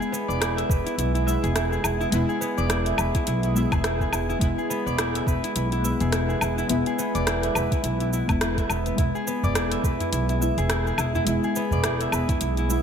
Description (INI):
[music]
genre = organic downtempo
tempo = 105 BPM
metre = 4/4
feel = swing 58% on 16ths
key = E major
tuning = A4 = 440 Hz
[part]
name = deep mellow chord stab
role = accompaniment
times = 0.0-12.8 s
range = G#3 to E4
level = -31 LUFS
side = left 3 dB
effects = chorus, sidechain pumping, ping-pong delay
[part]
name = warm analog pad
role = sustained chords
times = 0.0-12.8 s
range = G#3 to B4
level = -30 LUFS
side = right 1 dB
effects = chorus, sidechain pumping
[part]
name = concert harp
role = arpeggios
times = 0.0-12.8 s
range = B3 to E5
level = -28 LUFS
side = equal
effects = ping-pong delay
[part]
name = afro-pop drum kit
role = drums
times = 0.0-12.8 s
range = cabasa, hi-hat, rim click, woodblock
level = -29 LUFS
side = equal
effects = gated reverb
[part]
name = upright bass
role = bass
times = 0.3-12.8 s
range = E1 to B1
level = -26 LUFS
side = right 1 dB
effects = none
[part]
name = electronic kick drum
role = drums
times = 0.7-12.4 s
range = none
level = -25 LUFS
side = right 1 dB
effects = none
[part]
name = udu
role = percussion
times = 9.4-12.4 s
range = none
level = -29 LUFS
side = equal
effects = none
[sound]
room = light reverb, small room ambience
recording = bright 1980s-style digital production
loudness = -22 LUFS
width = side -8 dB against mid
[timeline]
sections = 0.0-12.8 A section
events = none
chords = 0.0 E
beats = 0.41 0.98 1.55 | 2.12 2.70 3.27 3.84 | 4.41 4.98 5.55 6.12 | 6.70 7.27 7.84 8.41 | 8.98 9.55 10.12 10.70 | 11.27 11.84 12.41